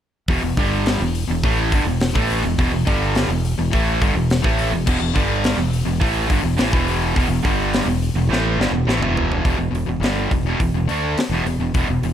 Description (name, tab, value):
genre	hard rock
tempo	105 BPM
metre	4/4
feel	straight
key	E minor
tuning	A4 = 444 Hz
part	cranked stack guitar	riff	0.3-12.1 s	E2 to D4	-23 LUFS	right 8 dB	overdrive
part	distorted electric guitar	riff	0.3-12.1 s	E2 to D4	-24 LUFS	left 10 dB	overdrive
part	modern bright fingered electric bass	bass	0.3-12.1 s	E1 to D2	-23 LUFS	equal	none
part	tight metal drum kit	drums	0.3-12.1 s	crash cymbal, hi-hat, kick drum, snare drum, toms	-22 LUFS	equal	none
room	little or no reverb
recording	none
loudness	-17 LUFS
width	side -10 dB against mid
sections	0.3-9.4 A section; 9.4-12.1 B section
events	drum fill 8.3-9.4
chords	0.3 Em